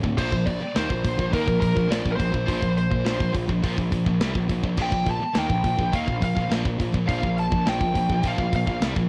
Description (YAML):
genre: heavy metal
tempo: 104 BPM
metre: 4/4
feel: straight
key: unclear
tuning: A4 = 441 Hz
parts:
  - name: heavy high-gain guitar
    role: riff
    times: 0.0-9.1 s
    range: D2 to Bb3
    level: -31 LUFS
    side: equal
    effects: distortion
  - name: high-gain distorted guitar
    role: riff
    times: 0.0-9.1 s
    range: D2 to Bb3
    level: -31 LUFS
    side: equal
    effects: distortion
  - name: fuzz picked electric bass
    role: bass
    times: 0.0-9.1 s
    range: D1 to Eb2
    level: -31 LUFS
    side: equal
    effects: overdrive
  - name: tight metal drum kit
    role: drums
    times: 0.0-9.1 s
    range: crash cymbal, hi-hat, kick drum, snare drum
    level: -29 LUFS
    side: equal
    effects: none
  - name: high-gain lead guitar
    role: melody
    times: 0.2-8.8 s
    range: Bb4 to A5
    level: -30 LUFS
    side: equal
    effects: distortion
room: light reverb, small room ambience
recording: worn, warbling old tape, cassette tape, warbly pitch drift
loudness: -24 LUFS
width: mono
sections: 0.0-9.1 A section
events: none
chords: 0.2 Bb5